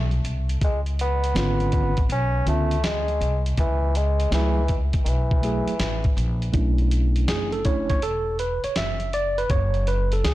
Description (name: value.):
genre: hip hop, jazz-hop.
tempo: 81 BPM.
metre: 4/4.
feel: swing 66% on 16ths.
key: F# minor.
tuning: A4 = 439 Hz.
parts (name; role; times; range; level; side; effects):
mellow bassoon; melody; 0.0-6.2 s; D#3 to C#4; -28 LUFS; equal; tape echo.
upright bass; bass; 0.0-10.3 s; E1 to D2; -23 LUFS; equal; transformer saturation.
dusty soul sampler-style drum kit; drums; 0.1-10.3 s; hi-hat, kick drum, snare drum; -26 LUFS; equal; none.
tine electric piano; accompaniment; 1.3-10.3 s; D3 to E5; -26 LUFS; right 2 dB; fast stereo tremolo.
room: little or no reverb.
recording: blown-out, overdriven recording, overdrive.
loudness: -20 LUFS.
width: side -16 dB against mid.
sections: 0.0-6.5 A section; 6.5-10.3 B section.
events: tine electric piano solo 6.5-10.3.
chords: 0.0 N.C.; 0.6 C#7b9; 3.6 F#m9/C#; 6.5 Bm11; 9.5 F#m.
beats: | 0.61 1.35 2.09 2.83 | 3.57 4.31 5.05 5.80 | 6.54 7.28 8.02 8.76 | 9.50 10.24.